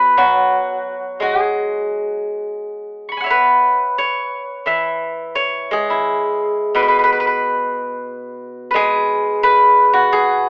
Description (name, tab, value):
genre	chinese traditional, Chinese solo plucked strings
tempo	88 BPM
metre	4/4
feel	uneven beats, rubato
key	unclear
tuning	A4 = 440 Hz
part	steel-string zither	solo	0.0-10.5 s	B2 to C#6	-14 LUFS	equal	none
room	light reverb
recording	rough home demo mix, telephone sound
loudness	-14 LUFS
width	side -34 dB against mid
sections	0.0-10.5 A section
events	none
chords	none